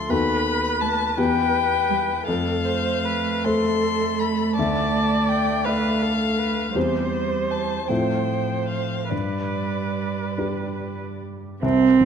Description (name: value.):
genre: classical, slow romantic movement for piano quartet.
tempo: 46-56 BPM (dotted quarters).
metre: 6/8.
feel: rubato.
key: unclear.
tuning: A4 = 440 Hz.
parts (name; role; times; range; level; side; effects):
muted violin; melody; 0.0-12.1 s; C5 to C6; -27 LUFS; left 9 dB; none.
muted viola; accompaniment; 0.0-11.0 s; A4 to D5; -27 LUFS; right 4 dB; none.
warm grand piano; accompaniment; 0.0-12.1 s; C2 to D5; -25 LUFS; left 3 dB; none.
muted cello; second line; 0.8-12.1 s; F3 to C4; -25 LUFS; right 6 dB; none.
room: wet recital hall reverb, RT60 1.9 s.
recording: none.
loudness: -20 LUFS.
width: side -7 dB against mid.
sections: 0.0-11.6 A section.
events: none.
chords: 0.1 B7/D#; 1.2 Em; 2.3 F; 4.6 Dm; 6.8 C/E; 7.9 F/A; 9.1 G.